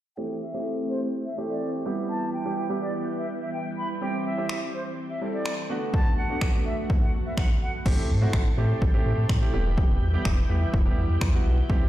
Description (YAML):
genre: dance-pop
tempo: 125 BPM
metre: 4/4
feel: straight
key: E minor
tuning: A4 = 442 Hz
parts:
  - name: silver concert flute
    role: melody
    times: 0.2-7.7 s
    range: C5 to B5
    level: -34 LUFS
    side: equal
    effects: low-pass filter, tape echo
  - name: warm baby grand piano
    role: accompaniment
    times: 0.2-11.9 s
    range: G3 to A4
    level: -31 LUFS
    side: right 2 dB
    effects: sidechain pumping, low-pass filter
  - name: ensemble organ-string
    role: sustained chords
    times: 0.2-11.9 s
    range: D3 to G5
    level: -34 LUFS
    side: left 1 dB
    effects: ensemble chorus, sidechain pumping, low-pass filter
  - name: punchy analog drum machine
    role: drums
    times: 4.5-11.8 s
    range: crash cymbal, finger snaps, kick drum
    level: -24 LUFS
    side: equal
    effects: overdrive
  - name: sub bass with octave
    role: bass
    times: 7.9-11.9 s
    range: E1 to A2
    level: -24 LUFS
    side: equal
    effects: sidechain pumping
room: light reverb, digital ambience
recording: played on a big sound system in a bare room, large studio reverb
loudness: -23 LUFS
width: side -14 dB against mid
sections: 0.2-7.9 A section; 7.9-11.9 B section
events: filter sweep 0.2-7.9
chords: 0.2 Am7; 1.9 Em; 4.0 C; 5.7 D6; 7.9 Am7; 9.5 Em